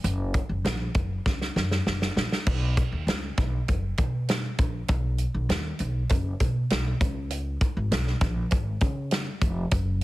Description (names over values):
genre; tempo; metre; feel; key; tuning
uptempo 1960s-style soul; 99 BPM; 4/4; straight; unclear; A4 = 440 Hz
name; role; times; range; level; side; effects
upright bass; bass; 0.0-10.0 s; E#1 to C#3; -27 LUFS; equal; none
natural country drum kit; drums; 0.0-10.0 s; crash cymbal, hi-hat, kick drum, snare drum; -26 LUFS; equal; none
room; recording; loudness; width
little or no reverb; heavily compressed radio sound; -24 LUFS; side -18 dB against mid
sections
0.0-2.5 A section; 2.5-10.0 B section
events
drum fill 1.3-2.5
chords
none